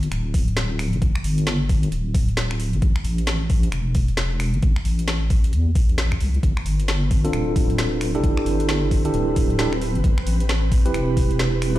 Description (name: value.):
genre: UK garage, two-step garage.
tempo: 133 BPM.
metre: 4/4.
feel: swing 61% on 16ths.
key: A minor.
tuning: A4 = 443 Hz.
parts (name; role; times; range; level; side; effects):
deep soft wobble bass; bass; 0.0-11.8 s; D1 to E2; -22 LUFS; equal; chorus.
garage drum kit; drums; 0.0-11.8 s; finger snaps, hi-hat, snare drum; -28 LUFS; equal; overdrive.
electronic kick drum; drums; 0.3-11.3 s; none; -20 LUFS; equal; overdrive.
ethereal airy pad; sustained chords; 6.6-11.8 s; C4 to B4; -32 LUFS; equal; ensemble chorus, built-in reverb, sidechain pumping.
tine electric piano; stabs; 7.2-11.8 s; C4 to B4; -23 LUFS; right 2 dB; fast stereo tremolo, low-pass filter, digital delay.
room: digital ambience.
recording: played on a big sound system in a bare room, stone room reverb.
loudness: -18 LUFS.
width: side -15 dB against mid.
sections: 0.0-11.8 A section.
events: none.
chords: 0.0 N.C.; 1.0 Dsus4; 2.6 A5; 6.4 G9sus4; 8.2 C69.